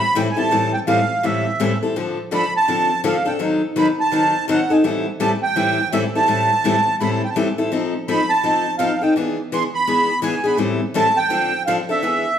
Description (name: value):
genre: jazz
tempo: 167 BPM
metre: 4/4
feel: swing 62% on 8ths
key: A minor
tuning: A4 = 440 Hz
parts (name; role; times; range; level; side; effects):
- accordion; melody; 0.0-12.4 s; E5 to C6; -19 LUFS; right 2 dB; light tremolo tuning
- picked steel-string acoustic guitar; accompaniment; 0.2-12.2 s; A2 to A4; -19 LUFS; left 2 dB; none
room: wet large studio reverb, RT60 1.2 s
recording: band playing live in one room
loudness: -16 LUFS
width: side -9 dB against mid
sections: 0.0-12.4 A section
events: none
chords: 0.0 Am7; 2.0 Dm7; 3.4 D#dim7; 4.8 Am7; 7.7 F7; 9.2 E7; 10.6 Am7; 11.3 Dm7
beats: 0.16 | 0.52 0.88 1.24 1.60 | 1.96 2.32 2.68 3.04 | 3.40 3.76 4.12 4.48 | 4.83 5.20 5.55 5.91 | 6.27 6.63 6.99 7.35 | 7.71 8.07 8.43 8.79 | 9.15 9.51 9.87 10.23 | 10.59 10.95 11.31 11.67 | 12.03 12.38